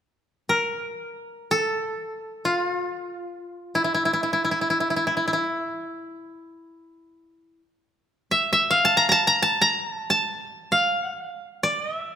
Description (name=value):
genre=japanese traditional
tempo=free time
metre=none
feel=none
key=unclear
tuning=A4 = 440 Hz
part: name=koto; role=melody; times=0.5-12.2 s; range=E4 to Bb5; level=-21 LUFS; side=equal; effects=none
room=moderate scoring stage reverb, RT60 1.8 s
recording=minimal, uncompressed stereo recording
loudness=-21 LUFS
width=side -8 dB against mid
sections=0.0-12.2 A section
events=none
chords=none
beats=free time